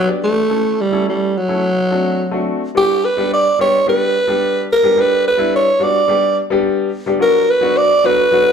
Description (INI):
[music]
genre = soul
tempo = 108 BPM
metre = 4/4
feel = straight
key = unclear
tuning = A4 = 439 Hz
[part]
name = breathy alto saxophone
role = melody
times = 0.0-8.5 s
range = F#3 to D5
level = -13 LUFS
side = right 1 dB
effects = none
[part]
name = clear grand piano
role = accompaniment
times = 0.1-8.5 s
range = F#3 to D5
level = -19 LUFS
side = left 4 dB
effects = none
[sound]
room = moderate large studio reverb, RT60 0.9 s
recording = band playing live in one room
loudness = -13 LUFS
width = side -7 dB against mid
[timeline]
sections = 0.0-2.7 A section; 2.7-8.5 B section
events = none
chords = 0.0 G; 0.5 A; 1.6 D7; 2.7 G; 7.2 Bm